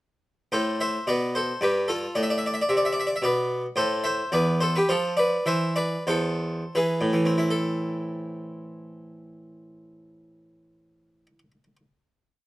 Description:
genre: classical, baroque-style suite movement for harpsichord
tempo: 76-113 BPM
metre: 3/4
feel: rubato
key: A minor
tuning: A4 = 440 Hz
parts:
  - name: harpsichord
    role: solo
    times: 0.5-11.8 s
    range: E2 to E5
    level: -23 LUFS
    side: equal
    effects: none
room: light reverb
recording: close, detailed microphones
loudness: -22 LUFS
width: side -17 dB against mid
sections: 0.5-7.5 A section; 7.5-11.9 final chord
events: slowing down 3.0-7.5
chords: 0.5 Am; 2.1 Amadd9; 3.8 Am; 4.9 F; 5.5 Am/E; 6.7 E; 7.5 Am

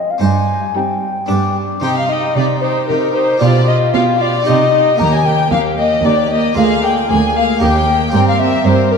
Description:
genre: classical, baroque-style concerto movement with solo episodes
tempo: 114 BPM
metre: 3/4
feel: straight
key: C minor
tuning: A4 = 439 Hz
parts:
  - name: baroque flute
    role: melody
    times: 0.0-9.0 s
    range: Bb4 to Bb5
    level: -17 LUFS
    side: left 4 dB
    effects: none
  - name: rich chamber violin section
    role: melody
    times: 0.0-9.0 s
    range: D4 to Bb4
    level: -25 LUFS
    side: left 6 dB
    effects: none
  - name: warm chamber violin section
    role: second line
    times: 0.0-9.0 s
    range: B3 to Bb5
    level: -20 LUFS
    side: left 3 dB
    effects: none
  - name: dark chamber viola section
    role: accompaniment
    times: 0.0-9.0 s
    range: G3 to F4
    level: -20 LUFS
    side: equal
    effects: none
  - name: harpsichord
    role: accompaniment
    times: 0.0-9.0 s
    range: D2 to D5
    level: -21 LUFS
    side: equal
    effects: none
  - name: rich chamber cello section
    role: bass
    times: 0.2-9.0 s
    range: D2 to C3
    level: -17 LUFS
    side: right 4 dB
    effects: none
room: wet concert hall reverb, RT60 2.5 s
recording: dark, warm production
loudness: -12 LUFS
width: side -6 dB against mid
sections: 0.0-1.8 A section; 1.8-9.0 A section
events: none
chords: 0.2 Cm/G; 1.3 G; 1.8 Cm; 3.4 G7/B; 4.5 Cm; 5.0 Eb; 6.6 Bb7/D; 7.6 Eb; 8.1 C5/G

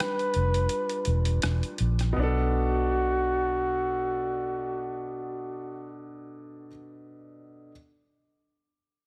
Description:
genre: R&B, neo-soul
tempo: 79-86 BPM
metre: 4/4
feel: swing 55% on 16ths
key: B minor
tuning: A4 = 442 Hz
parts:
  - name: mellow flugelhorn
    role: melody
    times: 0.0-6.0 s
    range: F#4 to B4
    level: -31 LUFS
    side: equal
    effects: none
  - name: clear grand piano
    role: accompaniment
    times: 0.0-7.7 s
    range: B2 to B4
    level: -37 LUFS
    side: equal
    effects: none
  - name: boom bap sampler-style drum kit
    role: drums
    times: 0.0-2.2 s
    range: hi-hat, rim click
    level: -36 LUFS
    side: equal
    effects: none
  - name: vintage muted fingered electric bass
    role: bass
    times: 0.4-6.7 s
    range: E1 to B1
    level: -29 LUFS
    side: equal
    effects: none
room: digital ambience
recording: none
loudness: -28 LUFS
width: mono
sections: 0.0-2.2 A section; 2.2-5.2 B section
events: break 0.0-2.2; slowing down 0.0-2.2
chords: 0.0 G7; 2.2 Bm7

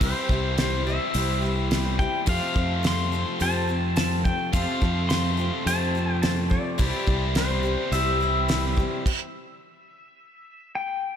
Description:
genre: folk rock and heartland rock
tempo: 106 BPM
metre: 4/4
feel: straight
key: F major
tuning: A4 = 440 Hz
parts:
  - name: pedal steel guitar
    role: melody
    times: 0.0-11.2 s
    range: C5 to C6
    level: -29 LUFS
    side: left 2 dB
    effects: slapback echo, digital delay
  - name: picked swing-style acoustic guitar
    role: accompaniment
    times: 0.0-9.1 s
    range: F2 to A4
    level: -32 LUFS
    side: left 4 dB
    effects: none
  - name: biting overdriven guitar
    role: riff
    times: 0.0-9.0 s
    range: F2 to F4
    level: -29 LUFS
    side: equal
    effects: slapback echo
  - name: fingered electric bass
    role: bass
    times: 0.0-8.8 s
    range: C2 to F2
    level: -26 LUFS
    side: equal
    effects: none
  - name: damped 70s drum kit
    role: drums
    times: 0.0-9.2 s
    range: crash cymbal, hi-hat, kick drum, snare drum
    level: -27 LUFS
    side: right 1 dB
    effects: none
room: moderate lush hall reverb, RT60 1.8 s, studio ambience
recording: big arena sound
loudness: -22 LUFS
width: side -8 dB against mid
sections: 0.0-11.2 A section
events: stop 9.1-11.2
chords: 0.0 C; 2.3 F; 6.8 C

